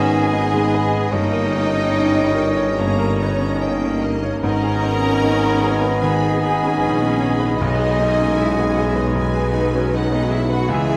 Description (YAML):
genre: classical, romantic movement for piano and orchestra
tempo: 69-80 BPM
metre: 4/4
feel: rubato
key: G# minor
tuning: A4 = 440 Hz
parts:
  - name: bright grand piano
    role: melody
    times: 0.0-11.0 s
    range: B1 to C#5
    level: -24 LUFS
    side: equal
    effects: none
  - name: clear studio violin section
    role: melody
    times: 0.0-11.0 s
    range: D#5 to B5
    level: -37 LUFS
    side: equal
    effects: none
  - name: clear oboe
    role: second line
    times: 0.0-11.0 s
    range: D#5 to E5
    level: -30 LUFS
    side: equal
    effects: none
  - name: mellow hollow flute section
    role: second line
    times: 0.0-11.0 s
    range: B4 to A#5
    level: -30 LUFS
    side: equal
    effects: none
  - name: rich studio violin section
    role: second line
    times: 0.0-11.0 s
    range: B4 to A#5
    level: -35 LUFS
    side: equal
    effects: none
  - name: mellow bassoon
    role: accompaniment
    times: 0.0-11.0 s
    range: G#3 to C#4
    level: -28 LUFS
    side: equal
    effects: none
  - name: rich studio viola section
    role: accompaniment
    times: 0.0-11.0 s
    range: E3 to C#4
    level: -30 LUFS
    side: equal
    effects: none
  - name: mellow French horn section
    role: sustained chords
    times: 0.0-11.0 s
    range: G#3 to E4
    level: -28 LUFS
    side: equal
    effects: none
  - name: mellow tuba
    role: bass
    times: 0.0-11.0 s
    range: G1 to C#2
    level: -28 LUFS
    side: equal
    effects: none
  - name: rich studio cello section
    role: bass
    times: 0.0-11.0 s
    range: B3 to A#4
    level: -28 LUFS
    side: equal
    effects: none
  - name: rich studio double bass section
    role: bass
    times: 0.0-11.0 s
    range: G1 to C#2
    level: -28 LUFS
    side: equal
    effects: none
  - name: timpani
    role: percussion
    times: 4.4-5.6 s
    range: none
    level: barely audible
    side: none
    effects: none
room: light reverb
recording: close, detailed microphones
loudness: -18 LUFS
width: mono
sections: 0.0-11.0 A section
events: none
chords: 0.0 G#m; 1.1 D#7/G; 4.4 G#m; 7.6 G#m/B